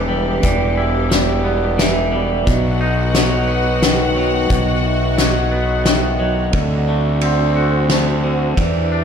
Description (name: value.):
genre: post-rock.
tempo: 88 BPM.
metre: 3/4.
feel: straight.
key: unclear.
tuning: A4 = 440 Hz.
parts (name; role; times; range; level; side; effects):
rich symphonic string section; sustained chords; 0.0-9.0 s; D3 to F#5; -24 LUFS; equal; none.
twangy electric guitar; arpeggios; 0.0-9.0 s; B2 to F#4; -22 LUFS; left 2 dB; ping-pong delay.
vibraphone with soft mallets; arpeggios; 0.0-9.0 s; B4 to E5; -23 LUFS; right 4 dB; ping-pong delay.
fuzz fingered electric bass; bass; 0.0-9.0 s; E1 to E2; -19 LUFS; equal; overdrive.
loose indie drum kit; drums; 0.4-8.7 s; hi-hat, kick drum, ride cymbal, snare drum; -20 LUFS; left 1 dB; none.
room: moderate church reverb, RT60 2.8 s.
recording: dreamy mix soaked in reverb.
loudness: -14 LUFS.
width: side -7 dB against mid.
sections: 0.0-6.5 A section; 6.5-9.0 B section.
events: none.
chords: 0.0 Em; 2.5 B; 6.5 D7.